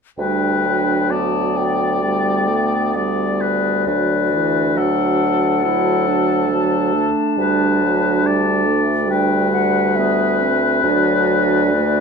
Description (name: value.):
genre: classical, slow romantic movement for wind quintet.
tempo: 63-71 BPM.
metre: 4/4.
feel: rubato.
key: G major.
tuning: A4 = 441 Hz.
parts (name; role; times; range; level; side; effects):
concert flute; melody; 0.2-12.0 s; D5 to A5; -22 LUFS; left 10 dB; none.
warm oboe; second line; 0.2-12.0 s; A4 to D5; -21 LUFS; left 5 dB; none.
bright clarinet; accompaniment; 0.2-12.0 s; B3 to E4; -22 LUFS; right 6 dB; none.
warm French horn; accompaniment; 0.2-12.0 s; E3 to A3; -23 LUFS; equal; none.
mellow bassoon; bass; 0.2-12.0 s; D2; -21 LUFS; right 4 dB; none.
room: light reverb.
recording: minimal, uncompressed stereo recording.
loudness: -15 LUFS.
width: side -5 dB against mid.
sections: 0.2-12.0 A section.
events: none.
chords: 0.2 G/D; 3.9 Dadd9; 7.4 D.